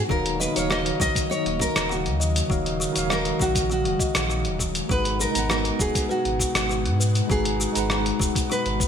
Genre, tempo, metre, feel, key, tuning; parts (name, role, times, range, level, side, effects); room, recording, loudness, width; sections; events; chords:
sunset chillout; 100 BPM; 4/4; straight; G# dorian; A4 = 443 Hz
mellow tine electric piano; accompaniment; 0.0-8.9 s; D#3 to A#5; -29 LUFS; moving between left 6 dB and right 4 dB; medium stereo tremolo, auto-pan
airy breathy pad; sustained chords; 0.0-8.9 s; B2 to F#4; -32 LUFS; left 2 dB; chorus, phaser
nylon-string guitar; melody; 0.1-8.9 s; F#4 to D#5; -28 LUFS; right 1 dB; ping-pong delay
kalimba; arpeggios; 0.1-8.9 s; F#4 to D#5; -32 LUFS; left 3 dB; ping-pong delay
warm sub bass; bass; 0.1-8.8 s; D#1 to G#2; -28 LUFS; equal
dusty soul sampler-style drum kit; drums; 0.1-8.9 s; cabasa, hi-hat, rim click; -27 LUFS; left 1 dB; gated reverb
electronic kick drum; drums; 0.1-8.9 s; -26 LUFS; equal
moderate lush hall reverb, RT60 2.0 s; bright 1980s-style digital production; -21 LUFS; side -8 dB against mid
0.0-8.9 A section
0.1 D#m7; 4.9 G#m9